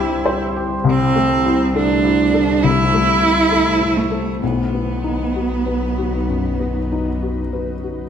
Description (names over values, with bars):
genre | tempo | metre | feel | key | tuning
neoclassical piano and strings | 64-68 BPM | 4/4 | rubato | unclear | A4 = 441 Hz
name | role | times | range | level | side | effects
clear cello | second line | 0.0-7.2 s | A3 to E4 | -18 LUFS | right 4 dB | none
felt-muted upright piano | accompaniment | 0.0-8.1 s | B1 to C5 | -21 LUFS | left 4 dB | none
ethereal airy pad | sustained chords | 0.0-8.1 s | F#3 to C5 | -27 LUFS | left 1 dB | ensemble chorus, built-in reverb
clear double bass | bass | 0.0-8.1 s | B1 to C2 | -24 LUFS | equal | none
room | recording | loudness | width
wet recital hall reverb, RT60 1.8 s | recorded in a church or concert hall | -15 LUFS | side -8 dB against mid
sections
0.0-8.1 A section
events
none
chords
0.0 C; 0.9 Am/C; 4.4 B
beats
| 0.86 1.75 2.63 3.52 | 4.42 5.34 6.27 7.21